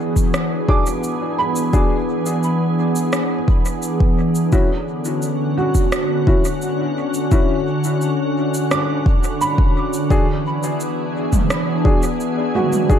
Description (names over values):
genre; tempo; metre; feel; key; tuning
ambient dub; 86 BPM; 4/4; straight; E mixolydian; A4 = 440 Hz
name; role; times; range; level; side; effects
soft additive organ-like pad; sustained chords; 0.0-13.0 s; D3 to G#4; -20 LUFS; equal; ensemble chorus, built-in reverb
electronic kick drum; drums; 0.2-13.0 s; none; -16 LUFS; equal; none
organic electronic drum kit; drums; 0.2-13.0 s; rim click, shaker, toms; -25 LUFS; right 1 dB; overdrive, dub echo
felt-muted upright piano; arpeggios; 0.7-13.0 s; F#4 to D6; -25 LUFS; right 4 dB; vintage 12-bit sampler grit, dub echo
dark upright piano; stabs; 0.7-13.0 s; C#4 to G#4; -24 LUFS; left 3 dB; dub echo
room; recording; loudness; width
light reverb, digital ambience; dark, warm production; -16 LUFS; side -9 dB against mid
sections
0.0-13.0 A section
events
none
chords
0.0 E7; 4.5 Dmaj7; 10.1 E7